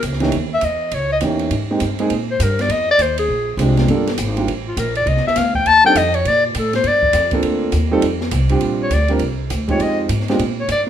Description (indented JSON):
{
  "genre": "jazz, small-group swing and bop",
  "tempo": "203 BPM",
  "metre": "4/4",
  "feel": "swing 62% on 8ths",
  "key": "Bb major",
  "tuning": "A4 = 440 Hz",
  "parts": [
    { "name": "breathy clarinet", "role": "melody", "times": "0.0-10.8 s", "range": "F4 to A5", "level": "-16 LUFS", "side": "left 2 dB", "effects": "none" },
    { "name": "upright bass", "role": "bass", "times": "0.0-10.9 s", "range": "G1 to Bb2", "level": "-21 LUFS", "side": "equal", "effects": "none" },
    { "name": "open jazz drum kit", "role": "drums", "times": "0.0-10.8 s", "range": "hi-hat, kick drum, ride cymbal, snare drum", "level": "-26 LUFS", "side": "right 1 dB", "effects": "none" },
    { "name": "warm concert grand piano", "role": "accompaniment", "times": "0.2-10.9 s", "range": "E3 to Bb4", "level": "-19 LUFS", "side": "right 3 dB", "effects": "none" }
  ],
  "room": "light reverb",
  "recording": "minimal, uncompressed stereo recording",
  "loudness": "-15 LUFS",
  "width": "side -10 dB against mid",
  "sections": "0.0-8.6 A section; 8.6-10.9 B section",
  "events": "clarinet solo 8.6-10.9",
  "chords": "0.3 Eb7b9; 1.5 Abmaj9; 2.7 Ab6 (rootless); 3.3 Bb13; 3.9 Gm9; 5.1 F7sus2; 6.3 Bbmaj9; 8.0 Fsus2; 8.6 Bb6; 9.8 Fm7",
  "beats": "0.03 | 0.33 0.63 0.92 1.22 | 1.52 1.81 2.11 2.41 | 2.70 3.00 3.29 3.59 | 3.89 4.18 4.48 4.77 | 5.07 5.36 5.66 5.96 | 6.25 6.55 6.84 7.14 | 7.43 7.73 8.03 8.32 | 8.62 8.91 9.21 9.51 | 9.80 10.10 10.40 10.70"
}